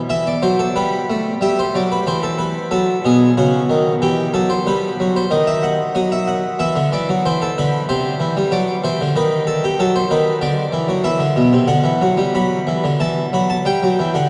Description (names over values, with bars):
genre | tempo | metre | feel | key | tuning
classical, baroque-style suite movement for harpsichord | 93 BPM | 4/4 | rubato | E minor | A4 = 440 Hz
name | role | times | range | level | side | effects
harpsichord | solo | 0.1-14.3 s | B2 to B5 | -17 LUFS | equal | none
room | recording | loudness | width
wet cathedral reverb, RT60 5.8 s | dark, warm production, nothing above 10.8 kHz | -17 LUFS | mono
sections
0.1-14.3 A section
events
none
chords
0.1 Em; 2.7 B13; 4.0 Em; 5.3 D#m; 6.6 D13; 7.9 Cadd9; 9.2 B7b9b13/D#; 10.4 Bm; 13.0 Em